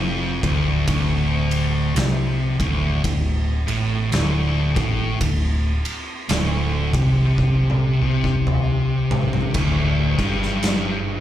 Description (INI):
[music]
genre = stoner and doom metal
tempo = 55 BPM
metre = 4/4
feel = swing 59% on 8ths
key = D minor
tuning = A4 = 440 Hz
[part]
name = thick fuzz guitar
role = riff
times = 0.0-11.2 s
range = D2 to C3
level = -23 LUFS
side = left 5 dB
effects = distortion
[part]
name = thick fuzz guitar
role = riff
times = 0.0-11.2 s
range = D2 to C3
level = -24 LUFS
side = right 6 dB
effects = distortion
[part]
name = hollow-body short-scale fingered electric bass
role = bass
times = 0.0-11.2 s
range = D1 to C2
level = -24 LUFS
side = equal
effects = overdrive
[part]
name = oversized low-tuned drum kit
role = drums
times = 0.4-10.9 s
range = crash cymbal, kick drum, ride cymbal, snare drum, toms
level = -24 LUFS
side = equal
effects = none
[sound]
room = light reverb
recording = live gig heard through the venue's PA, club reverb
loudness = -18 LUFS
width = side -12 dB against mid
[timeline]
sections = 0.0-9.5 A section; 9.5-11.2 B section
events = drum fill 7.4-9.5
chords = 0.0 Dm; 9.5 N.C.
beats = | 0.87 1.96 3.04 4.12 | 5.21 6.29 7.38 8.46 | 9.55 10.63